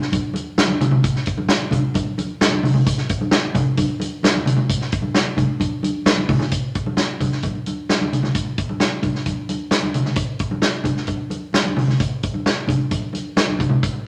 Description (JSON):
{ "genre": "soul", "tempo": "132 BPM", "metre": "4/4", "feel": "straight", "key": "none", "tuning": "none", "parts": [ { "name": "swinging big-band drum kit", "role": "drums", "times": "0.0-13.9 s", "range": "hi-hat, kick drum, snare drum", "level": "-23 LUFS", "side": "equal", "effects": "none" }, { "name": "congas", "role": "percussion", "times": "0.1-14.0 s", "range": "none", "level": "-24 LUFS", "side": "equal", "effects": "none" } ], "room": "wet club reverb, RT60 0.8 s", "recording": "none", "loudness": "-20 LUFS", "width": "mono", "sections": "0.0-6.5 A section; 6.5-14.1 B section", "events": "none", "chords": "none" }